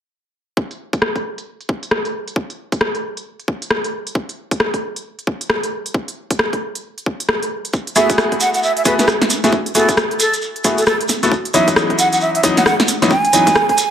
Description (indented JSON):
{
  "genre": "UK garage, two-step garage",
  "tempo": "134 BPM",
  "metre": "4/4",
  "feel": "swing 62% on 16ths",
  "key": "F# dorian",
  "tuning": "A4 = 441 Hz",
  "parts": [
    { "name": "electronic kick drum", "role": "drums", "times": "0.6-13.8 s", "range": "none", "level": "-22 LUFS", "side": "equal", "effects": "high-pass filter on kick, high-pass filter on room" },
    { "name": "garage drum kit", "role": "drums", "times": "0.7-13.9 s", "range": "hi-hat, rim click, snare drum", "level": "-18 LUFS", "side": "equal", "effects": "low-pass filter on hats, low-pass filter on snare, low-pass filter on room" },
    { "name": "shekere", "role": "percussion", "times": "7.7-13.9 s", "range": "none", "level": "-23 LUFS", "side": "right 2 dB", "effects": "none" },
    { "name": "breathy jazz flute", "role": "melody", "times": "8.0-13.9 s", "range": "A4 to G#5", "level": "-17 LUFS", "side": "right 2 dB", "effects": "digital delay" },
    { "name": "bright grand piano", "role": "stabs", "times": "8.0-13.5 s", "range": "E3 to A4", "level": "-18 LUFS", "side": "left 2 dB", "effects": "vintage 12-bit sampler grit, digital delay" }
  ],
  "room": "moderate plate reverb, RT60 0.9 s, studio ambience",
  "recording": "none",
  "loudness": "-15 LUFS",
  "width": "side -9 dB against mid",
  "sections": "0.6-13.9 A section",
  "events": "filter sweep on drum 0.6-13.9",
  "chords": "0.6 N.C.; 7.7 F#m11; 11.3 C#m11"
}